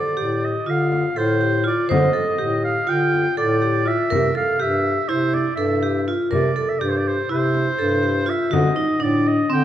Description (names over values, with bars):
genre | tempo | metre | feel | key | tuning
contemporary instrumental, chamber music in an uneven meter | 245 BPM (eighths) | 9/8 | straight | unclear | A4 = 440 Hz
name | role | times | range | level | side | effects
clear oboe | melody | 0.0-9.6 s | C5 to G5 | -23 LUFS | right 2 dB | none
vibraphone with hard mallets | arpeggios | 0.0-9.6 s | C4 to C5 | -21 LUFS | right 1 dB | none
mellow bass clarinet | bass | 0.2-9.6 s | G2 to D3 | -23 LUFS | left 2 dB | none
frame drum | percussion | 0.9-8.9 s | none | -30 LUFS | left 5 dB | none
room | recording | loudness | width
moderate concert hall reverb, RT60 2.4 s | none | -17 LUFS | side -11 dB against mid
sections
0.0-9.6 A section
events
none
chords
0.0 Dm; 4.1 C; 8.5 D7